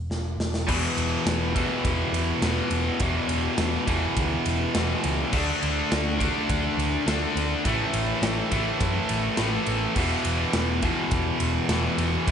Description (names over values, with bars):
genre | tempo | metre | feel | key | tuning
hard rock | 104 BPM | 4/4 | straight | unclear | A4 = 441 Hz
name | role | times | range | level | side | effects
hollow-body short-scale picked electric bass | bass | 0.0-12.3 s | E1 to F#2 | -29 LUFS | equal | none
big rock drum kit | drums | 0.1-12.3 s | crash cymbal, kick drum, ride cymbal, snare drum | -29 LUFS | equal | none
crunchy overdriven guitar | riff | 0.7-12.3 s | E2 to D4 | -29 LUFS | left 10 dB | none
heavy high-gain guitar | riff | 0.7-12.3 s | E2 to D4 | -29 LUFS | right 11 dB | distortion
scooped high-gain guitar | riff | 0.7-12.3 s | E2 to D4 | -30 LUFS | equal | distortion
room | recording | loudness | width
light reverb | nothing above 10.4 kHz | -22 LUFS | side -8 dB against mid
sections
0.7-12.3 A section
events
drum fill 0.1-0.7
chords
0.0 E5; 5.3 D5; 7.6 A5; 10.0 E5